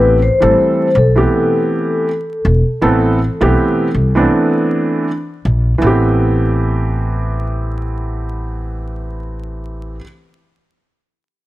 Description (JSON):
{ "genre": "hip hop, jazz-hop", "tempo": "80 BPM", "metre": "4/4", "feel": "swing 58% on 16ths", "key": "A minor", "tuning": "A4 = 441 Hz", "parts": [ { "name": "vibraphone with soft mallets", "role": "melody", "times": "0.0-5.0 s", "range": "A4 to C5", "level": "-17 LUFS", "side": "left 2 dB", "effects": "none" }, { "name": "dark concert grand piano", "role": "accompaniment", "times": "0.0-10.0 s", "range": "E3 to A4", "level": "-16 LUFS", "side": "right 1 dB", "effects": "none" }, { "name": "upright bass", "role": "bass", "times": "0.0-10.0 s", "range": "E1 to C2", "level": "-16 LUFS", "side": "equal", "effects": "none" } ], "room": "light reverb, studio reverb", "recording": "vinyl crackle", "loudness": "-12 LUFS", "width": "side -16 dB against mid", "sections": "0.0-5.8 A section; 5.8-8.8 B section", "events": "none", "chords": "0.0 Am9" }